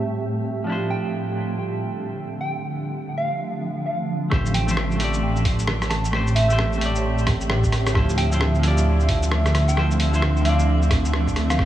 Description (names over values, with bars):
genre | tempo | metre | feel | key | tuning
future garage | 132 BPM | 4/4 | swing 62% on 16ths | D minor | A4 = 441 Hz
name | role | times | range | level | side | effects
semi-hollow electric guitar | accompaniment | 0.0-11.7 s | F3 to D5 | -27 LUFS | left 1 dB | vintage 12-bit sampler grit, sidechain pumping, analog delay
granular cloud pad | sustained chords | 0.0-11.7 s | A2 to E5 | -26 LUFS | right 1 dB | built-in reverb, sidechain pumping
wind-like tuned noise texture | texture | 0.0-3.4 s | G3 to G4 | -38 LUFS | right 5 dB | none
soft struck synth lead | melody | 0.9-11.6 s | E5 to A5 | -30 LUFS | right 1 dB | chorus, tremolo, cassette tape, analog delay
dark detuned saw bass | bass | 4.3-11.7 s | A1 to D2 | -21 LUFS | equal | sidechain pumping
electronic kick drum | drums | 4.3-11.7 s | none | -23 LUFS | equal | small room ambience
lo-fi sampler-style drum kit | drums | 4.3-11.7 s | hi-hat, rim click, shaker | -27 LUFS | equal | small room ambience
room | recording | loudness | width
moderate huge ambient reverb, RT60 6.5 s | dreamy mix soaked in reverb, small room ambience | -19 LUFS | side -12 dB against mid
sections
0.0-4.3 A section; 4.3-11.7 B section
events
filter sweep on ambient pad 0.0-4.3; filter sweep on clean electric guitar 0.0-4.3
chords
0.0 Am7; 0.7 Dm9; 4.3 Am7; 8.0 Dm9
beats
0.23 | 0.68 1.13 1.59 2.04 | 2.50 2.95 3.41 3.86 | 4.32 4.77 5.22 5.68 | 6.13 6.59 7.04 7.50 | 7.95 8.41 8.86 9.32 | 9.77 10.22 10.68 11.13 | 11.59